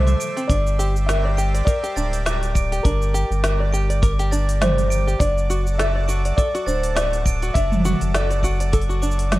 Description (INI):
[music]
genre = folktronica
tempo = 102 BPM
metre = 4/4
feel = swing 56% on 16ths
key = unclear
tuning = A4 = 440 Hz
[part]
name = felt-muted upright piano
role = melody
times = 0.0-9.4 s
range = Bb4 to E5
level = -26 LUFS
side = equal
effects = tape echo
[part]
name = glockenspiel with hard plastic mallets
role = second line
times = 0.0-9.4 s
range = D6 to D7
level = -31 LUFS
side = right 3 dB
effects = tape echo
[part]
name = accordion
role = sustained chords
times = 0.0-9.4 s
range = F#3 to E5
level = -33 LUFS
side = equal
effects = none
[part]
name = open-back banjo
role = arpeggios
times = 0.0-9.4 s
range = C4 to D5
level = -28 LUFS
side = equal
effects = vintage 12-bit sampler grit
[part]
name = warm sub bass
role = bass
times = 0.0-9.4 s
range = D1 to C2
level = -20 LUFS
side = equal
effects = none
[part]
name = organic electronic drum kit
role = drums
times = 0.1-9.4 s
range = hi-hat, shaker, snare drum, toms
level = -26 LUFS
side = equal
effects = overdrive
[part]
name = kick drum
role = drums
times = 0.5-8.9 s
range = none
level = -20 LUFS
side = equal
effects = none
[sound]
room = small room ambience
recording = dark, warm production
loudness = -18 LUFS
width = side -17 dB against mid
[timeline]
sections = 0.0-9.4 A section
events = none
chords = 0.5 Gm; 5.2 D